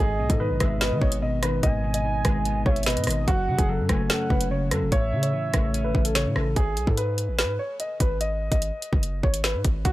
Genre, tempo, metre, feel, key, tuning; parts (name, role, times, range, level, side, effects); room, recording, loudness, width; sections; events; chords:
hip hop, drill; 146 BPM; 4/4; half-time; G# phrygian; A4 = 441 Hz
dark baby grand piano; melody; 0.0-9.9 s; F#4 to D#5; -29 LUFS; equal; low-pass filter
gliding portamento lead; second line; 0.0-6.1 s; D#5 to G#5; -32 LUFS; right 3 dB; chorus, tape echo
mellow electric guitar; accompaniment; 0.0-6.6 s; F#2 to C#4; -28 LUFS; left 1 dB; low-pass filter
hard-hitting 808-style bass; bass; 0.0-9.9 s; F#1 to D#3; -28 LUFS; equal
drill drum kit; drums; 0.3-9.9 s; hi-hat, kick drum, rim click, snare drum; -24 LUFS; equal
little or no reverb; -22 LUFS; side -16 dB against mid
0.0-6.6 A section; 6.6-9.9 B section
0.0 G#m; 3.3 F#m; 4.9 A; 6.6 G#m